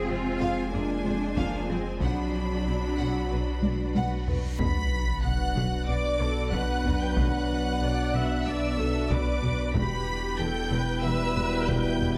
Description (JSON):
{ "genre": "cinematic, hybrid orchestral and electronic film score", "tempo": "93 BPM", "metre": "4/4", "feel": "straight", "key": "B phrygian", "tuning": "A4 = 440 Hz", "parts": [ { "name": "rich symphonic violin section", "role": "second line", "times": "0.0-12.2 s", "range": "Ab4 to B5", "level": "-38 LUFS", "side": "equal", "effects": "none" }, { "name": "dark symphonic viola section", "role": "accompaniment", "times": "0.0-12.2 s", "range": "F#3 to E5", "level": "-37 LUFS", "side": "equal", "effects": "none" }, { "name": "mellow French horn section", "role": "sustained chords", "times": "0.0-12.2 s", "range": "F#3 to F#4", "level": "-36 LUFS", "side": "equal", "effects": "none" }, { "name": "organ-like drone", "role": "sustained chords", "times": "0.0-12.2 s", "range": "E3 to C5", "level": "-41 LUFS", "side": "equal", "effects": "ensemble chorus, built-in reverb" }, { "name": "rich studio cello section", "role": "bass", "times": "0.0-12.1 s", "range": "E2 to F4", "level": "-37 LUFS", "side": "equal", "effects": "none" }, { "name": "sub bass with octave", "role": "bass", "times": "0.0-12.2 s", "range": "E1 to B1", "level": "-34 LUFS", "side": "equal", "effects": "none" }, { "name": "clear symphonic double bass section", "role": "bass", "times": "0.1-12.1 s", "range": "E1 to F2", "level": "-35 LUFS", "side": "equal", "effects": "none" }, { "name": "taiko ensemble", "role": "drums", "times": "1.4-12.2 s", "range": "none", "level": "-34 LUFS", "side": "equal", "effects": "none" }, { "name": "reverse cymbal and sub drop", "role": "sound effects", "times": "4.3-7.2 s", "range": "none", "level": "-35 LUFS", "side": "equal", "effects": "none" }, { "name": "rich symphonic violin section", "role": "melody", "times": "4.6-12.2 s", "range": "D6 to B6", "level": "-38 LUFS", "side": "equal", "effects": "none" }, { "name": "warm trombone section", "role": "sustained chords", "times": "4.6-12.2 s", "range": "B2 to G3", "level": "-38 LUFS", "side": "equal", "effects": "none" } ], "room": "light reverb", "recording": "close, detailed microphones", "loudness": "-27 LUFS", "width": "mono", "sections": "0.0-4.6 A section; 4.6-12.2 A section", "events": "drum fill 3.6-4.6; reverse cymbal 4.3; impact 4.6-7.2", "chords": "0.0 Fm; 2.0 Bm; 9.8 Em" }